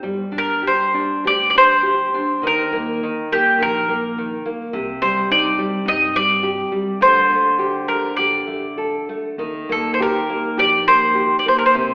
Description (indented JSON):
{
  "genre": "fado-style ballad",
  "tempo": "103 BPM",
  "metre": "4/4",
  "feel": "rubato",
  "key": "G minor",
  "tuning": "A4 = 440 Hz",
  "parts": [
    { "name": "nylon-string guitar", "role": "accompaniment", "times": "0.0-11.9 s", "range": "C3 to A4", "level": "-25 LUFS", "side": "equal", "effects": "none" },
    { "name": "upright bass", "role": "bass", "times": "0.0-11.9 s", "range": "G1 to G2", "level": "-42 LUFS", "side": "equal", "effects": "none" },
    { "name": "bowl-back mandolin", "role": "melody", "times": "0.4-11.7 s", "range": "G4 to Eb5", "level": "-18 LUFS", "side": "equal", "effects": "none" }
  ],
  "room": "wet recital hall reverb, RT60 1.5 s",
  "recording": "recorded in a church or concert hall, telephone sound",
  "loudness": "-18 LUFS",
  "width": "mono",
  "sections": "0.0-11.9 A section",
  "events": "none",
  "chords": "0.0 G5; 2.4 Eb5; 4.7 Cm; 7.0 Dsus4; 9.4 Eb",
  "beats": "| 0.04 0.65 1.25 1.84 | 2.43 3.01 3.59 4.17 | 4.74 5.30 5.87 6.44 | 7.02 7.59 8.19 8.79 | 9.39 9.99 10.58 11.16 | 11.74"
}